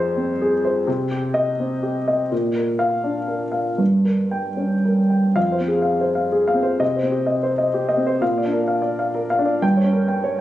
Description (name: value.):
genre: neoclassical minimalist piano.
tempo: 113-130 BPM.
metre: 3/4.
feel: rubato.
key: F minor.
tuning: A4 = 439 Hz.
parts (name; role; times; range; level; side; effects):
warm grand piano; solo; 0.0-10.4 s; F2 to G5; -18 LUFS; equal; none.
room: little or no reverb.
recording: recorded on a phone in the room, studio reverb.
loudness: -18 LUFS.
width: side -13 dB against mid.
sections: 0.0-5.4 A section; 5.4-10.4 B section.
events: none.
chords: 0.0 Fm; 0.9 Cm; 2.3 Bb; 3.8 Gdim; 5.4 Fm; 6.8 Cm; 8.2 Bb; 9.6 Gdim.